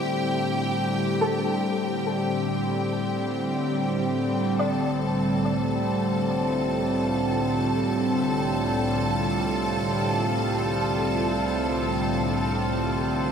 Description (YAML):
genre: ambient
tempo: free time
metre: none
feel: none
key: unclear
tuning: A4 = 438 Hz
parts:
  - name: warbly tape-like pad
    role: sustained chords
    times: 0.0-13.3 s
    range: C2 to F4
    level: -24 LUFS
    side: equal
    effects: chorus, built-in reverb
  - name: bright symphonic violin section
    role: texture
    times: 0.0-13.3 s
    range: G4 to A5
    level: -30 LUFS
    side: equal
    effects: none
  - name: soft round pluck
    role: arpeggios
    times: 1.2-8.1 s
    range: A4 to D5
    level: -31 LUFS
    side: left 2 dB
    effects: ensemble chorus, ping-pong delay
room: wet lush hall reverb, RT60 2.8 s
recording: none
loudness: -22 LUFS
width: side -7 dB against mid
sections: 0.0-13.3 A section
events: none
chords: 0.0 C6; 4.6 Dm/C